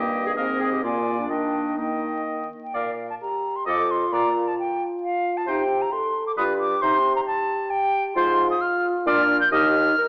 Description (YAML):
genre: quick classical-period movement for wind quintet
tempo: 132 BPM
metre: 3/4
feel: rubato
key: Bb major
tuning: A4 = 442 Hz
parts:
  - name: concert flute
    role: melody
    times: 0.0-10.1 s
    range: F5 to G6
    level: -26 LUFS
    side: equal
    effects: none
  - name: warm oboe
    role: second line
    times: 0.0-9.7 s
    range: B4 to Eb5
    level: -31 LUFS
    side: equal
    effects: none
  - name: mellow French horn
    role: accompaniment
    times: 0.0-10.1 s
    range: Bb3 to Bb4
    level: -30 LUFS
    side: equal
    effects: none
  - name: warm clarinet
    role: accompaniment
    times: 0.0-9.7 s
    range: D4 to Bb4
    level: -33 LUFS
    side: equal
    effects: none
  - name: warm bassoon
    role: bass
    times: 0.0-9.9 s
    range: Eb2 to Eb3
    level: -32 LUFS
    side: equal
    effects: none
room: wet recital hall reverb, RT60 1.7 s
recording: vinyl crackle, small speaker sound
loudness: -23 LUFS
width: mono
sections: 0.0-2.7 A section; 2.7-10.1 B section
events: none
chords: 0.4 Fm7/Ab (rootless); 0.8 Bb7; 1.3 Eb; 2.7 Bb5; 3.7 F7; 4.1 Bb5; 5.5 Cm; 6.4 G7; 6.8 C5; 8.2 Fm/Ab; 9.1 Bb; 9.5 Eb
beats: 0.37 0.83 | 1.30 1.78 2.27 | 2.75 3.21 3.67 | 4.12 4.58 5.03 | 5.48 5.93 6.38 | 6.83 7.27 7.72 | 8.16 8.62 9.07 | 9.52 9.98